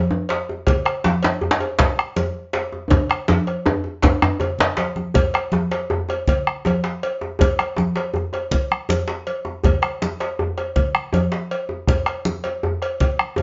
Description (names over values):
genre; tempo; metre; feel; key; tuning
west african traditional, West African drum ensemble; 107 BPM (dotted quarters); 12/8; straight; none; none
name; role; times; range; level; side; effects
djembe; percussion; 0.1-4.8 s; none; -22 LUFS; equal; none
cowbell; percussion; 0.3-13.4 s; none; -29 LUFS; equal; none
djembe; percussion; 0.3-13.4 s; none; -27 LUFS; equal; none
bombo; percussion; 0.7-13.4 s; none; -22 LUFS; equal; none
congas; percussion; 0.7-13.4 s; none; -27 LUFS; equal; none
room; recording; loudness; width
moderate studio reverb, RT60 0.6 s; nothing above 7.5 kHz; -21 LUFS; mono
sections
0.0-5.2 A section; 5.2-13.4 B section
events
drum fill 2.9-5.2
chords
none